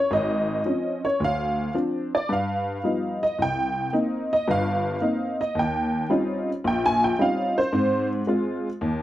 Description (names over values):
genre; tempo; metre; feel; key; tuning
solo jazz; 110 BPM; 4/4; swing 68% on 8ths; unclear; A4 = 443 Hz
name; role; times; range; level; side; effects
honky-tonk upright piano; solo; 0.0-9.0 s; G1 to Ab5; -22 LUFS; equal; none
room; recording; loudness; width
moderate studio reverb, RT60 0.5 s; rough home demo mix; -22 LUFS; side -14 dB against mid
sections
0.0-9.0 A section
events
honky-tonk piano solo 0.0-9.0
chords
0.0 Dbmaj7; 1.2 Dm7; 2.3 Gaug7; 3.4 Cm7; 5.6 Eb13; 7.7 Ab6